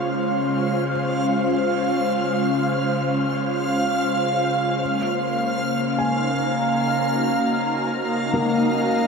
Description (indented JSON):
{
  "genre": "ambient",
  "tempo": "51 BPM",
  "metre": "4/4",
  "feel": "straight",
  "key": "Db major",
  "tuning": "A4 = 440 Hz",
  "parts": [
    { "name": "airy breathy pad", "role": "sustained chords", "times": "0.0-9.1 s", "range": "Ab3 to Bb5", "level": "-22 LUFS", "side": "left 1 dB", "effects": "chorus, phaser" },
    { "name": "felt-muted upright piano", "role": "arpeggios", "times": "0.0-9.1 s", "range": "Bb3 to Ab5", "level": "-30 LUFS", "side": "left 1 dB", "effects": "diffuse ambient delay" },
    { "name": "organ-like drone", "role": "drone", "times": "0.0-9.1 s", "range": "Db3 to Db4", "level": "-28 LUFS", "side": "equal", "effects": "ensemble chorus, built-in reverb" },
    { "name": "backwards swelling texture", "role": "texture", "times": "0.0-9.1 s", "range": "F5 to F6", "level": "-25 LUFS", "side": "right 2 dB", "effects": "built-in reverb" }
  ],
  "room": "wet shimmer reverb, RT60 7.6 s",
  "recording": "dark, warm production",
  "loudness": "-19 LUFS",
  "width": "side -5 dB against mid",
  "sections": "0.0-9.1 A section",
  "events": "none",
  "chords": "0.0 Dbmaj7; 4.8 Ebm"
}